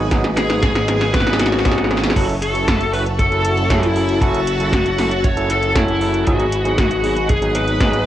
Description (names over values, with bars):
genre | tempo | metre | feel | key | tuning
synthwave | 117 BPM | 4/4 | straight | F# dorian | A4 = 440 Hz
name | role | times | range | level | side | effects
string machine, full ensemble | sustained chords | 0.0-8.1 s | F#4 to B5 | -26 LUFS | equal | phaser, ensemble chorus, sidechain pumping, cassette tape, shimmer reverb
overdriven tine electric piano | stabs | 0.0-8.0 s | F#3 to A4 | -23 LUFS | right 2 dB | fast tremolo, cassette tape, shimmer reverb
fat analog bass | bass | 0.0-8.1 s | F#1 to G#1 | -22 LUFS | equal | tube saturation
80s electronic pad drums | drums | 0.1-8.0 s | crash cymbal, hi-hat, snare drum | -21 LUFS | equal | cassette tape
kick drum | drums | 0.1-7.9 s | none | -20 LUFS | equal | cassette tape
bluesy overdriven lead guitar | melody | 0.4-8.0 s | E4 to C#5 | -20 LUFS | left 2 dB | distortion, analog delay, shimmer reverb
room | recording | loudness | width
moderate small room reverb, RT60 0.5 s | home recording on cassette | -15 LUFS | side -12 dB against mid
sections
0.0-2.2 A section; 2.2-8.1 B section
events
drum fill 0.0-2.2; filter sweep on tine electric piano 0.0-2.2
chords
0.0 G#m7; 2.2 F#m7; 6.3 G#m7